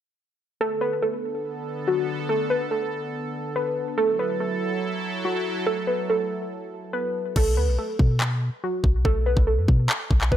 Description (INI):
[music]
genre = hip hop, trap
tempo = 142 BPM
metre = 4/4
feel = half-time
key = B minor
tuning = A4 = 440 Hz
[part]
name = warbly dusty pluck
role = melody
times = 0.6-10.4 s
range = F#4 to B4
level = -25 LUFS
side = equal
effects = chorus, low-pass filter, ping-pong delay
[part]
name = sweeping resonant pad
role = sustained chords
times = 0.6-7.3 s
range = D3 to A4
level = -30 LUFS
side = right 2 dB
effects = chorus
[part]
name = clean 808-style bass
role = bass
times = 7.4-10.4 s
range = B1 to B2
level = -22 LUFS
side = equal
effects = none
[part]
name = trap drum kit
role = drums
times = 7.4-10.4 s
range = crash cymbal, handclaps, kick drum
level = -22 LUFS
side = equal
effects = none
[sound]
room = light reverb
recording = none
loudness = -22 LUFS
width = side -11 dB against mid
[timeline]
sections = 0.6-7.4 A section; 7.4-10.4 B section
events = hi-hats muted 7.4-10.4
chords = 0.6 Bm7; 4.0 F#m7; 7.4 B7(no3)